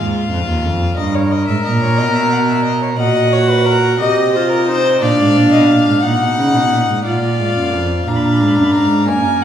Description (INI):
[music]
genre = classical, baroque-style fugue for string quartet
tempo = 59 BPM (dotted quarters)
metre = 6/8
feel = straight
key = unclear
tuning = A4 = 440 Hz
[part]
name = rich violin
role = melody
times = 0.0-9.4 s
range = C#5 to B5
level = -21 LUFS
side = left 5 dB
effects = none
[part]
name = warm violin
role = second line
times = 0.0-9.4 s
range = E#4 to F#5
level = -18 LUFS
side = left 2 dB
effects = none
[part]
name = rich cello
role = bass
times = 0.0-9.4 s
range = D#2 to C#3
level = -17 LUFS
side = right 2 dB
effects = none
[part]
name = warm viola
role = accompaniment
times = 3.0-9.4 s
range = A#3 to G4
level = -15 LUFS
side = right 1 dB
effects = none
[sound]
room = wet recital hall reverb, RT60 1.4 s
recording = heard from further back in the room, studio reverb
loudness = -12 LUFS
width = side -9 dB against mid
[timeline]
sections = 0.0-7.1 A section; 7.1-9.4 B section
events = none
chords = 0.0 D#sus24; 1.0 D#/G; 2.0 Bmaj7; 3.0 D#m/A#; 4.0 F5/C; 5.0 A#; 6.0 D#m/A#; 7.1 A#; 8.1 A#7